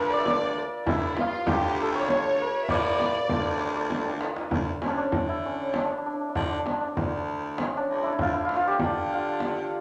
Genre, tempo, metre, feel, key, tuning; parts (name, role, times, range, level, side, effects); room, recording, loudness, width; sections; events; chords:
Persian modal ensemble; 98 BPM; 3/4; straight; D avaz esfahan; A4 = 441 Hz
santur; melody; 0.0-9.8 s; C#4 to E5; -30 LUFS; equal
clear violin; second line; 0.0-3.9 s; E4 to D5; -39 LUFS; equal
rich studio violin section; second line; 0.0-3.9 s; E4 to E5; -34 LUFS; equal
raspy baritone saxophone; bass; 0.0-9.8 s; C#2 to D3; -34 LUFS; equal
frame drum; percussion; 0.3-9.5 s; -34 LUFS; equal
tombak; percussion; 0.3-9.8 s; -36 LUFS; equal
wet large studio reverb, RT60 0.8 s; -27 LUFS; mono
0.0-4.5 A section; 4.5-9.8 B section
drum fill 3.9-4.5